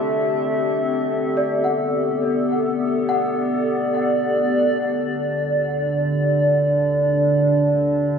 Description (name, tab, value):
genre	ambient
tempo	free time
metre	none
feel	none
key	unclear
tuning	A4 = 439 Hz
part	warbly tape-like pad	sustained chords	0.0-8.2 s	D3 to E5	-18 LUFS	equal	chorus, built-in reverb
part	celesta	arpeggios	0.0-4.8 s	D5 to F#5	-28 LUFS	left 2 dB	analog chorus, diffuse ambient delay
part	analog drone	drone	0.0-8.2 s	D3 to A3	-36 LUFS	left 1 dB	chorus, phaser
room	wet plate reverb, RT60 2.3 s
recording	dreamy mix soaked in reverb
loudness	-18 LUFS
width	side -6 dB against mid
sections	0.0-4.8 A section; 4.8-8.2 B section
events	fade-out on synth drone 0.0-4.8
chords	0.0 D7sus4; 1.4 Gadd9; 4.8 G5/D